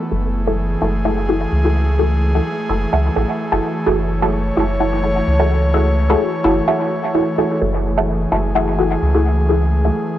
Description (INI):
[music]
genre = dub techno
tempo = 128 BPM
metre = 4/4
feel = swing 53% on 16ths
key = F# minor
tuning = A4 = 441 Hz
[part]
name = airy breathy pad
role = sustained chords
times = 0.0-10.2 s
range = E3 to C#5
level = -21 LUFS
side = equal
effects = chorus
[part]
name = filtered dub chord stab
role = stabs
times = 0.0-10.1 s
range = E4 to A4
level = -19 LUFS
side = equal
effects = phaser, dub echo
[part]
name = soft dub sub bass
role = bass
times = 0.1-9.9 s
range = F#1 to C#2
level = -18 LUFS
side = equal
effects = tube saturation
[sound]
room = light reverb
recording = dry, gritty hardware recording, cassette tape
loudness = -15 LUFS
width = side -12 dB against mid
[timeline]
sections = 0.0-10.2 A section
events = filter sweep on synth stab 0.0-10.2; break 6.7-7.6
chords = 0.0 F#m9